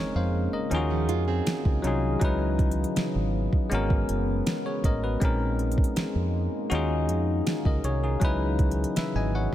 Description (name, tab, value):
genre	contemporary R&B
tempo	80 BPM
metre	4/4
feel	straight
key	unclear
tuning	A4 = 440 Hz
part	bell-like tine electric piano	accompaniment	0.0-9.5 s	F3 to Ab5	-28 LUFS	left 2 dB	none
part	deep dark ambient pad	sustained chords	0.1-9.5 s	Cb4 to Gb4	-34 LUFS	left 1 dB	chorus, built-in reverb, sidechain pumping
part	impact	sound effects	0.0-2.2 s	none	-46 LUFS	right 2 dB	none
part	deep dub fingered electric bass	bass	0.2-9.5 s	Gb1 to F2	-27 LUFS	right 1 dB	none
part	smooth R&B drum kit	drums	0.7-9.5 s	hi-hat, kick drum, snare drum	-26 LUFS	right 1 dB	none
part	nylon-string guitar	arpeggios	0.9-2.2 s	F3 to Ab4	-33 LUFS	right 10 dB	ping-pong delay
room	light reverb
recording	none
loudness	-23 LUFS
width	side -12 dB against mid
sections	0.0-9.5 A section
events	impact 0.0-2.2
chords	0.0 Bbm11; 0.7 Ebm11; 2.2 Dbm11; 3.7 Abm11; 5.2 Bbm11; 6.7 Ebm11; 8.2 Dbm11